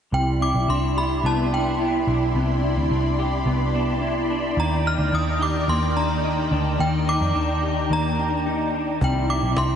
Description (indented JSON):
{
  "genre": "dream pop",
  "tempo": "108 BPM",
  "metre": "4/4",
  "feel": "straight",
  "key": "unclear",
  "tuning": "A4 = 440 Hz",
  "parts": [
    { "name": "synth chime", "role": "melody", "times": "0.1-9.8 s", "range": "G5 to F6", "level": "-26 LUFS", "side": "equal", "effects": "ensemble chorus, diffuse ambient delay" },
    { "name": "string machine, violas", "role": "sustained chords", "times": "0.1-9.8 s", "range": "Eb3 to C6", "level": "-26 LUFS", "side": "equal", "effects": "ensemble chorus" },
    { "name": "semi-hollow electric guitar", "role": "arpeggios", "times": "0.1-9.8 s", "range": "C3 to G4", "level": "-26 LUFS", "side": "left 1 dB", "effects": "ensemble chorus, diffuse ambient delay" },
    { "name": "vintage muted picked electric bass", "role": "bass", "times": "0.1-9.8 s", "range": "B1 to F2", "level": "-24 LUFS", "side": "equal", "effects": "none" },
    { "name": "cajon", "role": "drums", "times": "9.0-9.7 s", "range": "none", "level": "-27 LUFS", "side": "equal", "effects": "none" }
  ],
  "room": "wet huge ambient reverb, RT60 8.3 s",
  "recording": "dreamy mix soaked in reverb, nothing above 10.7 kHz",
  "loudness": "-20 LUFS",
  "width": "side -8 dB against mid",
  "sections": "0.1-9.8 A section",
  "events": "none",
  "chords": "0.1 Cmaj9; 4.6 Ebmaj7; 9.0 Cmaj9"
}